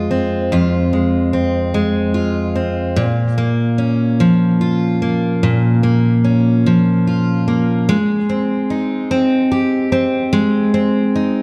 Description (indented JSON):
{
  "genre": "pop",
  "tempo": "49 BPM (dotted quarters)",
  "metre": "6/8",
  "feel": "straight",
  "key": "unclear",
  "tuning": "A4 = 440 Hz",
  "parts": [
    { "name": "picked steel-string acoustic guitar", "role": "solo", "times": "0.0-11.4 s", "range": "F2 to G4", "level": "-16 LUFS", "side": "equal", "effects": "analog delay" }
  ],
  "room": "wet scoring stage reverb, RT60 1.6 s",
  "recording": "dark, warm production",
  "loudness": "-16 LUFS",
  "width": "mono",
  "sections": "0.0-3.0 A section; 3.0-11.4 B section",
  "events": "none",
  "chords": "0.0 Fm; 3.0 Bbm; 7.9 Abmaj7"
}